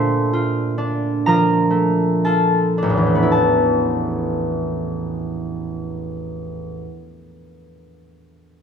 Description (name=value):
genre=classical, solo harp piece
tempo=54-70 BPM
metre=4/4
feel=rubato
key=unclear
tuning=A4 = 437 Hz
part: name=concert harp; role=solo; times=0.0-7.3 s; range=A1 to F6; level=-17 LUFS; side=equal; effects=none
room=moderate recital hall reverb, RT60 1.4 s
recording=minimal, uncompressed stereo recording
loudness=-17 LUFS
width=side -7 dB against mid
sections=0.0-3.3 A section; 3.3-7.3 B section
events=slowing down 0.0-3.3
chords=0.0 Bbmaj7; 3.3 Asus2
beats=0.32 1.22 2.21 | 3.28 4.30 5.32 6.33